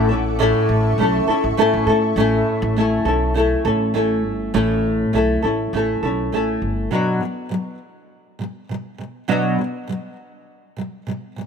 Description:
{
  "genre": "acoustic pop",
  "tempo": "101 BPM",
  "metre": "4/4",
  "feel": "swing 55% on 16ths",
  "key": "unclear",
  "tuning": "A4 = 440 Hz",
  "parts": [
    { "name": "nylon-string guitar", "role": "accompaniment", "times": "0.0-11.5 s", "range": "A2 to A4", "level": "-18 LUFS", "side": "equal", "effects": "double-tracked left and right" },
    { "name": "ethereal airy pad", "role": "sustained chords", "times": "0.0-2.1 s", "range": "A4 to C#6", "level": "-27 LUFS", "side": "equal", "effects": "ensemble chorus, built-in reverb" },
    { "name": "upright bass", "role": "bass", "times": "0.0-6.9 s", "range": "G1 to A2", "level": "-24 LUFS", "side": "equal", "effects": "none" }
  ],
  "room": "light reverb, studio reverb",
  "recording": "none",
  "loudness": "-17 LUFS",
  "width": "side -6 dB against mid",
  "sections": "0.0-2.2 A section; 2.2-6.9 B section; 6.9-11.5 C section",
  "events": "none",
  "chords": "0.0 A; 6.9 Bm",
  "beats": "0.40 0.99 1.58 | 2.17 2.77 3.36 3.95 | 4.54 5.13 5.73 6.32 | 6.91 7.51 8.10 8.69 | 9.29 9.88 10.48 11.07"
}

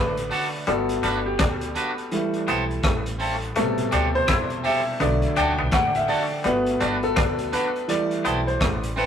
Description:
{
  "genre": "lovers rock reggae",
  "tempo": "83 BPM",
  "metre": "4/4",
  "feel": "swing 62% on 16ths",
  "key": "unclear",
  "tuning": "A4 = 445 Hz",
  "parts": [
    { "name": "bright baby grand piano", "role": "accompaniment", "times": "0.0-9.1 s", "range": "B2 to G5", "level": "-24 LUFS", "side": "equal", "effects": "none" },
    { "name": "twangy electric guitar", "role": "riff", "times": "0.0-8.8 s", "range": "G3 to E4", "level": "-29 LUFS", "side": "left 2 dB", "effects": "dub echo" },
    { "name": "upright bass", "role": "bass", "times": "0.0-9.1 s", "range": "G1 to E2", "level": "-29 LUFS", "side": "equal", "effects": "none" },
    { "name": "crunchy breakbeat drum kit", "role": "drums", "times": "0.2-9.1 s", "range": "hi-hat, kick drum, rim click", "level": "-27 LUFS", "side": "equal", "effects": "none" },
    { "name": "twangy electric guitar", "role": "stabs", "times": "0.3-9.1 s", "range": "C4 to B4", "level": "-26 LUFS", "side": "right 2 dB", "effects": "none" }
  ],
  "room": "moderate stone room reverb, RT60 1.1 s",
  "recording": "rough rehearsal-room recording, tube saturation",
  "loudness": "-20 LUFS",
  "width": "side -8 dB against mid",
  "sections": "0.0-9.1 A section",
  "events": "grand piano solo 0.0-9.1",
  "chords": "0.0 Bm7; 0.7 Gmaj7; 2.1 Am9; 3.6 Am7; 5.0 Bm7; 6.4 Gmaj7; 7.9 Am11",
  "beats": "| 0.67 1.40 2.12 2.84 | 3.56 4.28 5.00 5.73 | 6.45 7.17 7.89 8.61"
}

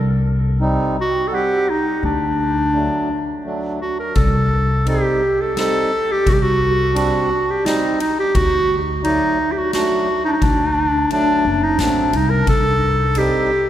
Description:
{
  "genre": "klezmer",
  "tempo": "86 BPM",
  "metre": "3/4",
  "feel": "straight",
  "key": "unclear",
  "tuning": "A4 = 441 Hz",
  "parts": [
    { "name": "upright bass", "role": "bass", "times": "0.0-13.3 s", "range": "F#1 to D2", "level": "-21 LUFS", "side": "left 1 dB", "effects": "none" },
    { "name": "mellow accordion", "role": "accompaniment", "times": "0.6-13.5 s", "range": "F#3 to F#5", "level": "-25 LUFS", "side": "right 1 dB", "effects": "none" },
    { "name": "clear clarinet", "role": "melody", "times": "1.0-13.7 s", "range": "D4 to Bb4", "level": "-17 LUFS", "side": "equal", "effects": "none" },
    { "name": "street-band drum kit", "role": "drums", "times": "4.2-13.3 s", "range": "kick drum, ride cymbal, snare drum", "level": "-23 LUFS", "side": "left 1 dB", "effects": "none" }
  ],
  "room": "wet cathedral reverb, RT60 4.0 s",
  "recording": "recorded in a church or concert hall",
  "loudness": "-15 LUFS",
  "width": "side -11 dB against mid",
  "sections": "0.0-4.2 A section; 4.2-13.7 B section",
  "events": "speeding up 0.0-13.7",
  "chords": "0.0 Cm; 2.0 D; 4.2 Cm; 8.3 D; 12.5 Cm",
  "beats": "0.62 1.33 | 2.04 2.75 3.45 | 4.16 4.86 5.56 | 6.26 6.95 7.65 | 8.34 9.03 9.72 | 10.41 11.10 11.79 | 12.47 13.16"
}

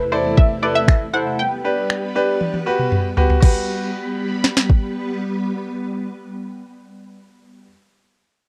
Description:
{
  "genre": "dance-pop",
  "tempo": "118 BPM",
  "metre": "4/4",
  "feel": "straight",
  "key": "G major",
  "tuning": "A4 = 440 Hz",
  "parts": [
    { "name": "analog pluck", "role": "melody", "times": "0.0-2.9 s", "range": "B4 to G5", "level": "-24 LUFS", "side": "equal", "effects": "chorus, analog delay" },
    { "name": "bright grand piano", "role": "accompaniment", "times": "0.0-7.7 s", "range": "D4 to D5", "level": "-24 LUFS", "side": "equal", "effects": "none" },
    { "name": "string machine, violins", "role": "sustained chords", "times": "0.0-7.7 s", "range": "E2 to B4", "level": "-28 LUFS", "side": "equal", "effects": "ensemble chorus, sidechain pumping" },
    { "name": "smooth R&B drum kit", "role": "drums", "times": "0.4-4.8 s", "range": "crash cymbal, finger snaps, kick drum, snare drum, toms", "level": "-18 LUFS", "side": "equal", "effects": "none" }
  ],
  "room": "light reverb",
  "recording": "worn, warbling old tape, cassette tape, warbly pitch drift",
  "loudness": "-19 LUFS",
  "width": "mono",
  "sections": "0.0-3.4 A section; 3.4-7.5 B section",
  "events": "drum fill 2.4-3.4",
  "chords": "0.0 C6/E; 1.4 Gmaj7",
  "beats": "0.37 0.88 | 1.39 1.90 2.41 2.92 | 3.42 3.93 4.44 4.95 | 5.46 5.97 6.48 6.98"
}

